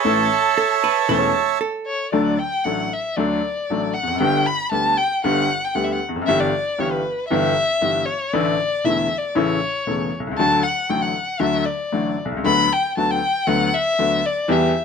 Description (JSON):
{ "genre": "tango", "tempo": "116 BPM", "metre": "4/4", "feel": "rubato", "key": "D major", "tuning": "A4 = 440 Hz", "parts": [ { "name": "bandoneon", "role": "melody", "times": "0.0-1.6 s", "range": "C#5 to A5", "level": "-18 LUFS", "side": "right 11 dB", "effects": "none" }, { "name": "warm violin", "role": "second line", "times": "0.0-14.8 s", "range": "A4 to B5", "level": "-21 LUFS", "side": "left 2 dB", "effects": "none" }, { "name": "bright upright piano", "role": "accompaniment", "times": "0.0-14.7 s", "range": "E1 to A4", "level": "-20 LUFS", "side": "left 2 dB", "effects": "none" }, { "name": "hollow-body jazz guitar", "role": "second line", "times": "0.6-2.1 s", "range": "A4 to C#5", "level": "-25 LUFS", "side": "right 6 dB", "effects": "none" } ], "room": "light reverb", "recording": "close, detailed microphones", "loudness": "-18 LUFS", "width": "side -6 dB against mid", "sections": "0.0-2.1 A section; 2.1-14.8 B section", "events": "violin solo 2.1-14.8", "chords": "0.1 A; 2.1 D; 4.2 G; 6.3 Em/G; 8.3 Asus4; 9.4 A; 10.4 D; 12.4 Bm/D", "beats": "| 0.05 0.57 1.09 1.61 | 2.13 2.66 3.18 3.69 | 4.21 4.73 5.24 5.76 | 6.27 6.78 7.30 7.81 | 8.32 8.84 9.35 9.87 | 10.38 10.90 11.42 11.93 | 12.44 12.95 13.46 13.97 | 14.48" }